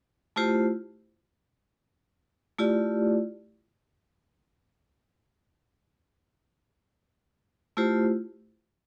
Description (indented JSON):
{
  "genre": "hip hop",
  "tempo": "free time",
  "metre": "none",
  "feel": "none",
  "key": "unclear",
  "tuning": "A4 = 439 Hz",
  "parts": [
    { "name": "vibraphone with medium hard mallets", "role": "solo", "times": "0.4-3.1, 7.8-8.1 s", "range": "A3 to D5", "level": "-27 LUFS", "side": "equal", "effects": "none" }
  ],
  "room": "wet small room reverb, RT60 0.5 s",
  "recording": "none",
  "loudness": "-28 LUFS",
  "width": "mono",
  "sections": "0.0-4.4 A section; 4.4-8.9 B section",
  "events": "none",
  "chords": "0.0 Dm11; 4.4 Am7",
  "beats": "free time"
}